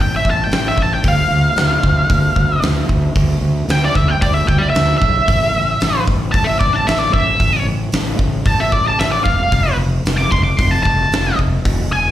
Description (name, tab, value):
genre	blues rock power trio and southern rock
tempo	113 BPM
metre	4/4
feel	straight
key	unclear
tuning	A4 = 440 Hz
part	octave-fuzz lead guitar	melody	0.0-12.1 s	D5 to D6	-17 LUFS	equal	wah, distortion, plate reverb, slapback echo, analog delay
part	fuzz fingered electric bass	bass	0.0-12.1 s	E1 to D2	-18 LUFS	equal	overdrive
part	huge arena drum kit	drums	0.2-11.8 s	hi-hat, kick drum, snare drum	-18 LUFS	equal	none
room	light reverb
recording	live gig heard through the venue's PA, club reverb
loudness	-13 LUFS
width	side -12 dB against mid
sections	0.0-12.1 A section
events	lead electric guitar solo 0.0-12.1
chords	0.0 Emadd11/A; 1.1 Dm; 5.3 A5; 9.5 F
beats	0.00 0.53 | 1.05 1.58 2.11 2.64 | 3.17 3.70 4.23 4.76 | 5.29 5.82 6.34 6.88 | 7.41 7.93 8.47 9.00 | 9.53 10.06 10.59 11.12 | 11.65